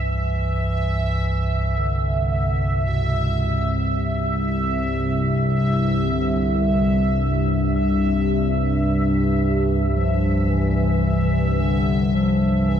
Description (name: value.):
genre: dark ambient drone.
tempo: free time.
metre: none.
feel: none.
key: C major.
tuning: A4 = 441 Hz.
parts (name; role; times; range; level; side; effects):
dark bass clarinet; melody; 0.0-12.8 s; B2 to G3; -28 LUFS; equal; diffuse ambient delay.
analog drone; drone; 0.0-12.8 s; C2 to G2; -19 LUFS; equal; chorus.
bubbling stepped-filter texture; texture; 0.0-12.8 s; E5; -27 LUFS; right 1 dB; chorus, built-in reverb, shimmer reverb.
room: wet huge ambient reverb, RT60 8.2 s.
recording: dreamy mix soaked in reverb.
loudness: -18 LUFS.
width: side -9 dB against mid.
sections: 0.0-12.8 A section.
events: fade-in on bass clarinet 0.0-12.8; filter sweep on synth drone 0.0-12.8.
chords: 0.0 Csus2.